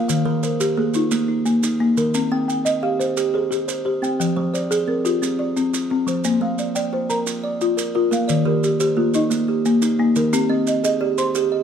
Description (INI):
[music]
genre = southern african traditional, mbira-style interlocking cycle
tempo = 117 BPM (dotted quarters)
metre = 12/8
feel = straight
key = Bb mixolydian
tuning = A4 = 442 Hz
[part]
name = folk marimba with medium mallets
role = arpeggios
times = 0.0-11.6 s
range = Eb3 to C6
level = -20 LUFS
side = left 3 dB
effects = none
[part]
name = kalimba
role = arpeggios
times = 0.0-11.6 s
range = Eb3 to G5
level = -22 LUFS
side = right 4 dB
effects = none
[part]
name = maracas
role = percussion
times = 0.1-11.5 s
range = none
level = -31 LUFS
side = right 8 dB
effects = none
[sound]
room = moderate recital hall reverb, RT60 1.6 s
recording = dark, warm production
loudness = -18 LUFS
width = side -8 dB against mid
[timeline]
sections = 0.0-6.2 A section; 6.2-11.6 B section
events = none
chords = 0.1 Eb; 4.2 Fm; 6.2 Bb; 8.3 Eb; 10.3 Cm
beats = | 0.09 0.60 1.12 1.63 | 2.15 2.66 3.17 3.69 | 4.20 4.71 5.22 5.74 | 6.25 6.76 7.27 7.78 | 8.29 8.80 9.31 9.82 | 10.33 10.84 11.35